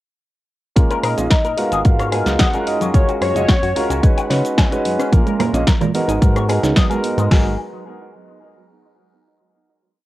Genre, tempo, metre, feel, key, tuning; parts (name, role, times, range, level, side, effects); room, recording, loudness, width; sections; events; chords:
nu-disco, nu disco; 110 BPM; 4/4; straight; G# dorian; A4 = 440 Hz
warm grand piano; accompaniment; 0.8-7.5 s; G#3 to D#5; -21 LUFS; right 1 dB; analog delay
chorused synth bass; bass; 0.8-7.6 s; F#1 to C#3; -22 LUFS; equal
house drum kit; drums; 0.8-7.4 s; hi-hat, kick drum, snare drum; -14 LUFS; equal
house drum kit; drums; 0.8-7.3 s; cabasa, hi-hat, rim click, snare drum; -22 LUFS; equal
electric guitar with an envelope filter; riff; 0.9-7.6 s; F#3 to G#5; -26 LUFS; left 6 dB; analog chorus, low-pass filter, analog delay
wide unison lead; melody; 1.0-4.3 s; C#5 to F#5; -22 LUFS; left 1 dB; cassette tape, tape echo
soft round pluck; arpeggios; 5.1-7.6 s; E#3 to D#4; -24 LUFS; right 6 dB; analog chorus, sidechain pumping, tape echo
cabasa and congas; percussion; 5.1-7.3 s; -23 LUFS; right 7 dB
light reverb; home recording on cassette; -14 LUFS; side -16 dB against mid
0.8-5.1 build; 5.1-7.3 outro; 7.3-9.5 final chord
build-up 0.8-5.1
0.8 A#m7; 1.6 G#m7; 2.7 F#maj7; 4.0 C#9sus4; 5.1 A#m7; 5.9 G#m7; 7.3 G#7(no3)